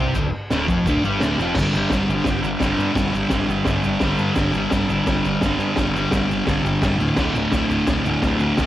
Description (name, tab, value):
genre	garage rock duo or trio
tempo	171 BPM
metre	4/4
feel	straight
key	unclear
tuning	A4 = 440 Hz
part	thick fuzz guitar	riff	0.0-8.7 s	D2 to C4	-20 LUFS	equal	distortion
part	growling picked electric bass	bass	0.0-8.7 s	D1 to G2	-28 LUFS	equal	overdrive
part	tube shaker	percussion	0.1-8.7 s	none	-48 LUFS	right 7 dB	none
part	raw garage drum kit	drums	0.2-8.7 s	crash cymbal, hi-hat, kick drum, snare drum	-24 LUFS	equal	cassette tape
room	light reverb, studio ambience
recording	home recording on cassette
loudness	-18 LUFS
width	side -13 dB against mid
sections	0.0-1.6 A section; 1.6-8.7 B section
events	drum fill 1.4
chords	0.0 D5; 1.6 G5; 7.0 D5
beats	| 0.15 0.51 0.86 1.21 | 1.56 1.91 2.26 2.61 | 2.96 3.31 3.66 4.01 | 4.36 4.71 5.07 5.42 | 5.77 6.12 6.47 6.82 | 7.17 7.52 7.87 8.22 | 8.58